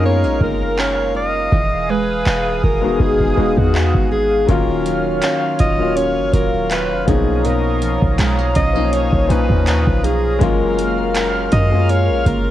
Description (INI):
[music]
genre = contemporary R&B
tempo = 81 BPM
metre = 4/4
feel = swing 54% on 16ths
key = unclear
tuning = A4 = 440 Hz
[part]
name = clear alto saxophone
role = melody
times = 0.0-12.5 s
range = F#4 to D#5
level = -21 LUFS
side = equal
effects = cassette tape
[part]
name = warm concert grand piano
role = accompaniment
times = 0.0-12.5 s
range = A#2 to F#4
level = -21 LUFS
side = left 7 dB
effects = cassette tape
[part]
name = chorused pulse-width pad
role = sustained chords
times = 0.0-12.5 s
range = G#4 to F6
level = -23 LUFS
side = right 1 dB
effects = sidechain pumping, cassette tape
[part]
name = nylon-string guitar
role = arpeggios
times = 0.0-12.5 s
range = B2 to F#4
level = -25 LUFS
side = right 8 dB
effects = cassette tape
[part]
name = clean 808-style bass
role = bass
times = 0.0-12.5 s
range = Eb1 to Gb2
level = -19 LUFS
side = equal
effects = none
[part]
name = booming analog drum machine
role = drums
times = 0.4-12.5 s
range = handclaps, hi-hat, kick drum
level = -20 LUFS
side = equal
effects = cassette tape
[sound]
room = small room reverb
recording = home recording on cassette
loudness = -14 LUFS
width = side -13 dB against mid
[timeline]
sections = 0.0-12.5 A section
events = break 0.0-4.5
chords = 0.0 Gbmaj7; 1.5 Emaj9; 4.5 Ebm9; 7.1 Bmaj9#11; 10.4 Gbmaj7